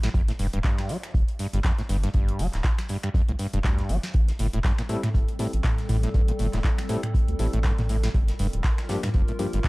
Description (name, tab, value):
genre	acid house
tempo	120 BPM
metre	4/4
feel	swing 57% on 16ths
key	unclear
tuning	A4 = 440 Hz
part	overdriven acid bass	riff	0.0-9.7 s	F2 to G3	-30 LUFS	equal	tube saturation, analog chorus, sidechain pumping, tape echo
part	round analog bass	bass	0.0-9.6 s	D1 to D2	-26 LUFS	equal	sidechain pumping
part	booming analog drum machine	drums	0.0-9.7 s	finger snaps, handclaps, hi-hat, snare drum, toms	-33 LUFS	equal	none
part	electronic kick drum	drums	0.1-9.7 s	none	-23 LUFS	equal	none
part	modern studio drum kit	drums	0.1-9.7 s	hi-hat, snare drum	-45 LUFS	left 1 dB	sidechain pumping on hats, high-pass filter on hats, high-pass filter on snare, high-pass filter on room
part	warbly tape-like pad	sustained chords	4.8-9.7 s	G3 to Bb4	-36 LUFS	left 1 dB	chorus, built-in reverb, sidechain pumping
part	overdriven tine electric piano	stabs	4.9-9.5 s	F3 to A4	-32 LUFS	left 2 dB	fast tremolo, tape echo
room	digital ambience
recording	dark, warm production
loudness	-22 LUFS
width	side -22 dB against mid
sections	0.0-9.7 A section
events	none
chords	0.1 G5; 4.1 Am7; 8.1 Gm7